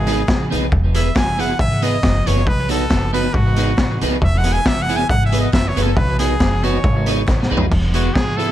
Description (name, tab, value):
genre	ska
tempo	137 BPM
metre	4/4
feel	straight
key	E major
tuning	A4 = 440 Hz
part	brilliant trumpet	melody	0.0-7.1 s	F#4 to G#5	-23 LUFS	right 1 dB	tape echo, plate reverb
part	upright bass	bass	0.0-8.5 s	E1 to B1	-20 LUFS	equal	none
part	electric guitar at the edge of break-up	accompaniment	0.1-8.5 s	B3 to B4	-23 LUFS	right 2 dB	wide subtle chorus, tape echo
part	raw garage drum kit	drums	0.1-8.5 s	crash cymbal, hi-hat, kick drum, snare drum, toms	-18 LUFS	equal	tape echo
part	group handclap	percussion	0.3-7.4 s	none	-37 LUFS	left 2 dB	none
part	brilliant trumpet	melody	7.9-8.5 s	F#4 to A4	-22 LUFS	equal	tape echo, plate reverb
room	light reverb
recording	dark, warm production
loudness	-14 LUFS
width	side -12 dB against mid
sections	0.0-7.7 A section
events	trumpet solo 0.0-7.7; drum fill 7.3-7.7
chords	0.0 G#m; 0.7 E; 2.5 B; 3.3 G#m; 4.2 E; 6.0 B; 6.8 G#m; 7.7 E